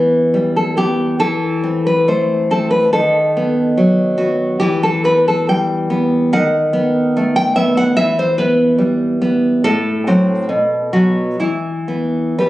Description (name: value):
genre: romantic piece for solo classical guitar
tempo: 60-74 BPM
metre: 2/4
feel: rubato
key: E minor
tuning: A4 = 438 Hz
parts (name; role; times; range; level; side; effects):
- nylon-string guitar; solo; 0.0-12.5 s; A2 to G5; -13 LUFS; equal; none
room: moderate recital hall reverb, RT60 1.3 s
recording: recorded on a phone in the room, club reverb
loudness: -13 LUFS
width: side -16 dB against mid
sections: 0.0-12.5 A section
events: none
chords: 0.0 Em; 1.2 Am/E; 2.9 B7/D#; 4.6 Em; 6.3 B7/D#; 8.0 Em; 9.6 F#dim/A; 10.5 B5; 11.4 Em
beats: 0.33 | 1.19 2.05 | 2.91 3.76 | 4.59 5.49 | 6.33 7.16 | 7.97 8.81 | 9.65 10.50 | 11.40 12.38